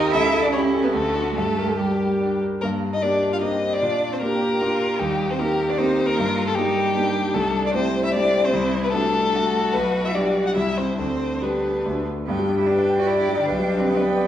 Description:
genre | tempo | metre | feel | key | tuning
quick classical-period movement for piano quartet | 137-156 BPM | 3/4 | rubato | G minor, G major from 7.3 s | A4 = 441 Hz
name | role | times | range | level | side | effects
warm violin | melody | 0.0-14.3 s | G4 to F#5 | -24 LUFS | left 3 dB | none
rich cello | second line | 0.0-14.3 s | G3 to F#4 | -27 LUFS | right 4 dB | none
rich violin | second line | 0.0-14.3 s | C4 to G5 | -30 LUFS | equal | none
clear concert grand piano | accompaniment | 0.0-14.3 s | B1 to G5 | -22 LUFS | equal | none
room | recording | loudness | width
wet recital hall reverb, RT60 1.4 s | heard from further back in the room | -19 LUFS | side -11 dB against mid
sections
0.0-2.6 A section; 2.6-12.3 A section; 12.3-14.3 B section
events
none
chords
0.1 A7/C#; 0.9 D; 1.4 Gm; 3.8 Gm/Bb; 5.0 Eb; 6.2 Eb/G; 7.3 Am7/C; 8.5 D7/C; 9.7 G/B; 10.6 C; 11.0 G/D; 11.8 D; 12.3 G; 13.5 G/B

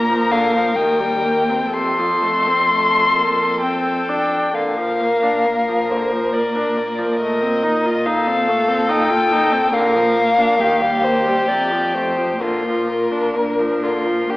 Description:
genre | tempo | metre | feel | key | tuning
classical, slow romantic movement for string quartet | 60-72 BPM | 3/4 | rubato | Bb major | A4 = 440 Hz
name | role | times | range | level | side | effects
muted violin | melody | 0.0-14.4 s | Bb4 to C6 | -19 LUFS | left 2 dB | none
muted violin | second line | 0.0-14.4 s | D4 to Bb4 | -21 LUFS | equal | none
muted viola | accompaniment | 0.0-14.4 s | C3 to F4 | -22 LUFS | right 1 dB | none
muted cello | bass | 0.0-14.4 s | Eb2 to D4 | -26 LUFS | right 1 dB | none
room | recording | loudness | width
wet concert hall reverb, RT60 1.8 s | recorded in a church or concert hall, AM radio sound | -15 LUFS | side -18 dB against mid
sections
0.0-14.4 A section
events
none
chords
0.0 Bb; 0.8 Eb6; 1.7 F; 4.6 Bb; 7.2 F7/Bb; 9.7 Bb; 10.6 Eb; 11.5 F; 12.4 Bb

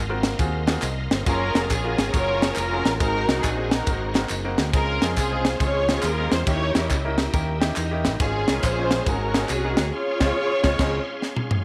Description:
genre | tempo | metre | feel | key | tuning
uptempo gospel | 138 BPM | 4/4 | swing 65% on 8ths | Db major | A4 = 441 Hz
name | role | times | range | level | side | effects
warm studio string section | melody | 0.0-11.5 s | Bb3 to Db5 | -28 LUFS | equal | none
clear grand piano | accompaniment | 0.0-11.0 s | Ab2 to Eb5 | -32 LUFS | equal | none
bright tonewheel organ | sustained chords | 0.0-11.6 s | Db4 to C6 | -38 LUFS | equal | none
fingered electric bass | bass | 0.0-11.0 s | F1 to F2 | -30 LUFS | equal | none
crisp fusion drum kit | drums | 0.2-11.6 s | crash cymbal, kick drum, ride cymbal, snare drum, toms | -26 LUFS | equal | none
tambourine and handclaps | percussion | 0.2-9.9 s | none | -37 LUFS | equal | none
direct-recorded clean electric guitar | second line | 7.3-8.2 s | Eb4 to Bb4 | -36 LUFS | equal | tape echo
room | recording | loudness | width
light reverb, small room ambience | none | -23 LUFS | mono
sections
0.0-11.6 A section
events
band accent 9.9-11.6; drum fill 11.2-11.6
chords
0.0 Ab13; 1.3 Gbmaj9; 3.0 Ab9; 4.7 Dbmaj7; 6.5 Eb7b9; 8.2 Db/Ab; 9.1 Ab9sus4; 9.9 Dbmaj7

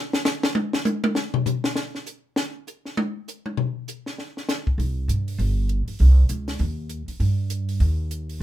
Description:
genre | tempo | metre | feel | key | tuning
modal jazz | 199 BPM | 4/4 | swing 61% on 8ths | unclear | A4 = 440 Hz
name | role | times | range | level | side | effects
compact cocktail drum kit | drums | 0.1-8.3 s | hi-hat, kick drum, snare drum, toms | -25 LUFS | left 1 dB | none
upright bass | bass | 4.8-8.4 s | G1 to G2 | -20 LUFS | right 1 dB | none
room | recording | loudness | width
light reverb | minimal, uncompressed stereo recording | -21 LUFS | side -13 dB against mid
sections
0.0-4.8 A section; 4.8-8.4 B section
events
drum solo 0.0-4.8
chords
none

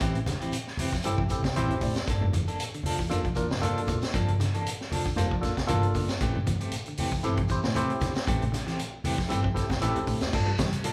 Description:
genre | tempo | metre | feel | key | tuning
afrobeat | 116 BPM | 4/4 | swing 54% on 16ths | G dorian | A4 = 442 Hz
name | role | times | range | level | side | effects
clean electric guitar | arpeggios | 0.0-10.7 s | Bb2 to G3 | -39 LUFS | equal | none
semi-hollow electric guitar | stabs | 0.0-10.9 s | E3 to A4 | -36 LUFS | equal | tremolo
warm double bass | bass | 0.0-10.9 s | F1 to G3 | -32 LUFS | equal | none
vintage drum kit | drums | 0.0-10.9 s | crash cymbal, hi-hat, kick drum, snare drum | -34 LUFS | equal | none
shekere | percussion | 0.0-10.9 s | none | -44 LUFS | equal | none
congas | percussion | 0.3-10.8 s | none | -37 LUFS | equal | none
barky tine electric piano | accompaniment | 1.0-10.3 s | Bb3 to G5 | -35 LUFS | equal | overdrive
room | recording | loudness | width
moderate large studio reverb, RT60 1.1 s | band playing live in one room | -28 LUFS | mono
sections
0.0-10.3 A section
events
tine electric piano fill 1.0-2.1, 9.3-10.3; drum fill 1.3-2.1, 9.6-10.3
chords
0.0 Am7; 2.1 Gm9; 6.2 Am7; 10.3 Gm9

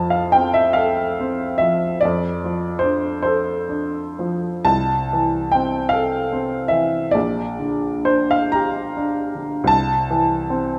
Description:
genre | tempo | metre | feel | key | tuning
classical, romantic nocturne for solo piano | 39-54 BPM (dotted quarters) | 12/8 | rubato | F major | A4 = 440 Hz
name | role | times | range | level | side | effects
warm upright piano | solo | 0.0-10.8 s | Bb1 to Bb5 | -20 LUFS | equal | none
room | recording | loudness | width
moderate recital hall reverb, RT60 1.4 s | none | -20 LUFS | mono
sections
0.0-10.8 A section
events
none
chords
0.0 F; 2.0 Dm/F; 4.7 Am/C; 7.1 Gm/Bb; 9.7 C

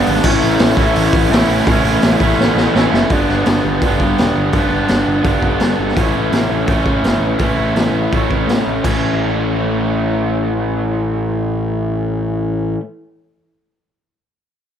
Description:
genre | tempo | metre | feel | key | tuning
garage rock duo or trio | 167 BPM | 4/4 | straight | A mixolydian | A4 = 440 Hz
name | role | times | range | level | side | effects
raw garage guitar | riff | 0.0-12.8 s | G2 to E4 | -15 LUFS | equal | overdrive
fuzz picked electric bass | bass | 0.1-12.7 s | E1 to A2 | -21 LUFS | equal | overdrive
raw garage drum kit | drums | 0.1-8.9 s | crash cymbal, hi-hat, kick drum, snare drum | -17 LUFS | equal | none
room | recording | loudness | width
light reverb, small room ambience | none | -13 LUFS | side -9 dB against mid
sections
0.0-3.1 A section; 3.1-8.8 B section; 8.8-11.7 C section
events
drum fill 2.4-3.1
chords
0.3 A; 3.1 G; 6.0 A

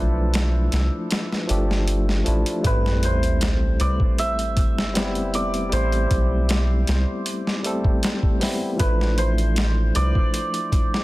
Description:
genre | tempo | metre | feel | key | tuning
trip hop | 78 BPM | 4/4 | straight | A minor | A4 = 440 Hz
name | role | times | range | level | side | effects
santur | melody | 0.0-11.0 s | A4 to E5 | -28 LUFS | right 1 dB | tape echo
barky tine electric piano | accompaniment | 0.0-11.0 s | F3 to A4 | -26 LUFS | left 1 dB | overdrive, harmonic tremolo, tape echo
soft dub sub bass | bass | 0.0-10.1 s | G1 to C2 | -20 LUFS | equal | none
boom bap sampler-style drum kit | drums | 0.3-11.0 s | hi-hat, kick drum, snare drum | -23 LUFS | equal | small room ambience
sub drop | sound effects | 2.6-5.7 s | none | -28 LUFS | equal | none
room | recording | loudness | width
little or no reverb | dense, heavily limited modern master | -19 LUFS | side -18 dB against mid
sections
0.0-2.6 A section; 2.6-11.0 B section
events
kick drops out 1.1-2.6; impact 2.6-5.7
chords
0.0 Dmadd9; 2.6 Am7; 8.8 Dmadd9/A

